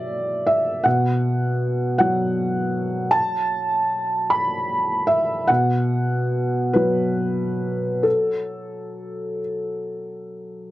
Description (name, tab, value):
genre	neoclassical minimalist piano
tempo	43-54 BPM (dotted quarters)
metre	6/8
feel	rubato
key	B minor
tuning	A4 = 440 Hz
part	felt-muted upright piano	solo	0.0-10.7 s	B2 to B5	-20 LUFS	equal	none
room	light reverb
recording	cassette tape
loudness	-19 LUFS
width	side -15 dB against mid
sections	0.0-10.7 A section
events	none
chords	0.0 B5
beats	| 0.85 1.99 | 3.13 4.31 | 5.49 6.74 | 8.04 9.41